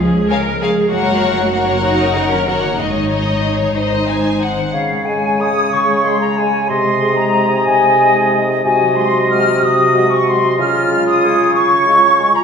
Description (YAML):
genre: classical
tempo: 173-210 BPM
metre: 3/4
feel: rubato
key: Db major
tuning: A4 = 440 Hz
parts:
  - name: rich studio viola section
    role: accompaniment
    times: 0.0-4.5 s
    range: Eb4 to Bb4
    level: -21 LUFS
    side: right 2 dB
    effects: none
  - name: concert harp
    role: arpeggios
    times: 0.0-12.4 s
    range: Gb2 to Ab5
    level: -23 LUFS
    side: left 3 dB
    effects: none
  - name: warm studio cello section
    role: bass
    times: 0.0-4.6 s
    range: F3 to Eb4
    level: -22 LUFS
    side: right 1 dB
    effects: none
  - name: warm studio double bass section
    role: bass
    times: 0.0-4.6 s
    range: Gb1 to Db2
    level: -24 LUFS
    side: right 2 dB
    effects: none
  - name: warm studio violin section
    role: melody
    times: 0.3-4.7 s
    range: Db5 to Ab5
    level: -23 LUFS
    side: left 3 dB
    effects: none
  - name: warm chamber violin section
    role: second line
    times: 0.3-4.6 s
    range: Eb4 to Db5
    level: -19 LUFS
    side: left 4 dB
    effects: none
  - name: clear oboe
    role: second line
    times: 4.7-12.4 s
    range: Db5 to Eb5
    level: -21 LUFS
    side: equal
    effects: none
  - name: flute section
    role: second line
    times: 4.7-12.4 s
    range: F5 to F6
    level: -14 LUFS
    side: left 1 dB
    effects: none
  - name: warm clarinet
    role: second line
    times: 4.7-12.2 s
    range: F4 to Ab4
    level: -20 LUFS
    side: equal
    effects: none
  - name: mellow bassoon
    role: accompaniment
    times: 4.7-12.2 s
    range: C3 to Db3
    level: -19 LUFS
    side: right 2 dB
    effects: none
  - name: mellow French horn section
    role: sustained chords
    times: 5.1-12.3 s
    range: Ab3 to Ab4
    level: -24 LUFS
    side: equal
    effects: none
room: wet recital hall reverb, RT60 1.7 s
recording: recorded in a church or concert hall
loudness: -12 LUFS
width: side -6 dB against mid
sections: 0.0-4.7 A section; 4.7-12.4 B section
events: none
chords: 0.0 Db; 0.9 Gb; 2.8 Absus4; 3.8 Ab; 4.7 Db; 6.7 Ab/C; 8.6 Ab7/C; 10.6 Db